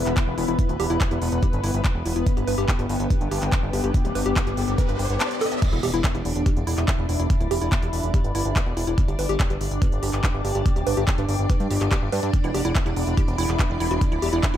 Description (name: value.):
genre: psychedelic trance.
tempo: 143 BPM.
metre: 4/4.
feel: straight.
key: E minor.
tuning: A4 = 441 Hz.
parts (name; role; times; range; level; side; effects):
evolving wavetable pad; sustained chords; 0.0-14.6 s; B3 to D5; -30 LUFS; left 1 dB; ensemble chorus, built-in reverb, sidechain pumping.
fat analog bass; bass; 0.0-14.6 s; D1 to G2; -26 LUFS; equal; none.
airy breathy pad; texture; 0.0-14.6 s; B3 to D6; -32 LUFS; equal; chorus, sidechain pumping.
techno drum kit; drums; 0.1-14.6 s; crash cymbal, handclaps, hi-hat; -30 LUFS; equal; none.
woody wave-folded pluck; riff; 0.2-14.6 s; E4 to A5; -29 LUFS; moving between left 5 dB and right 5 dB; chorus, auto-pan, sidechain pumping, digital delay.
electronic kick drum; drums; 0.2-14.5 s; none; -21 LUFS; equal; none.
riser and impact; sound effects; 3.6-7.3 s; none; -33 LUFS; equal; none.
room: digital ambience.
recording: dark, warm production.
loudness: -20 LUFS.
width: side -11 dB against mid.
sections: 0.0-5.6 A section; 5.6-14.6 B section.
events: riser 3.6-5.6; drop 5.6-14.6; impact 5.6-7.3.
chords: 0.0 E5; 2.3 G5; 5.6 E5.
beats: 0.17 | 0.59 1.01 1.43 1.85 | 2.27 2.69 3.10 3.52 | 3.94 4.36 4.78 5.20 | 5.62 6.04 6.46 6.88 | 7.30 7.72 8.14 8.56 | 8.98 9.40 9.82 10.24 | 10.66 11.08 11.50 11.92 | 12.34 12.76 13.17 13.59 | 14.01 14.43.